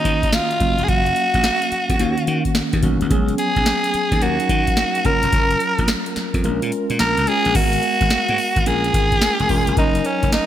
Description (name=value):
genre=R&B, new jack swing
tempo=108 BPM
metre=4/4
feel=swing 65% on 16ths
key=Eb minor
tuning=A4 = 440 Hz
part: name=raspy tenor saxophone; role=melody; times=0.0-10.5 s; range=Db4 to Bb4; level=-19 LUFS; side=right 1 dB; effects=none
part: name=mellow tine electric piano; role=accompaniment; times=0.0-10.5 s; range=Eb3 to Bb4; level=-23 LUFS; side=equal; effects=medium stereo tremolo
part: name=booming analog drum machine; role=drums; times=0.0-10.5 s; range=crash cymbal, hi-hat, kick drum, snare drum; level=-21 LUFS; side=equal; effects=gated reverb
part: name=slap bass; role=bass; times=0.1-10.4 s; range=Fb1 to Eb3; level=-23 LUFS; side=equal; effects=none
room=light reverb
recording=bright 1980s-style digital production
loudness=-16 LUFS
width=side -11 dB against mid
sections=0.0-7.5 A section; 7.5-10.5 B section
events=kick muted 6.4-7.5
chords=0.0 Ebm7; 0.6 Gbmaj7; 2.0 Ebm7; 3.1 Db7sus4; 4.2 Ebm7; 5.0 Gbmaj7; 6.4 Bbm7; 7.5 Abm9; 8.7 Bbm7; 9.8 Gb6